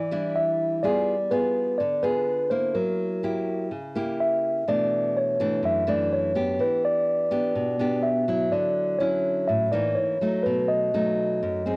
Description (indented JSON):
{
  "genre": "bossa nova",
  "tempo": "125 BPM",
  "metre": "4/4",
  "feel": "straight",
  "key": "unclear",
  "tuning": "A4 = 440 Hz",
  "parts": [
    { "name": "mellow tine electric piano", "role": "melody", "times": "0.0-11.8 s", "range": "A#4 to E5", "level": "-26 LUFS", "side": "equal", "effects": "none" },
    { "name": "nylon-string guitar", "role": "accompaniment", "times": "0.0-11.8 s", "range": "F#2 to Ab4", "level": "-30 LUFS", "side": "equal", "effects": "none" }
  ],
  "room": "moderate small room reverb, RT60 0.6 s",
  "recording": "worn, warbling old tape, cassette tape, warbly pitch drift",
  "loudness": "-25 LUFS",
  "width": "mono",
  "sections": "0.0-11.8 A section",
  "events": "none",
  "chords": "0.0 A7sus4 (rootless); 0.8 G7b9; 2.8 F#7b9; 4.7 Bm11; 6.6 Em7; 8.5 Dmaj9; 10.0 F#6; 10.4 B7"
}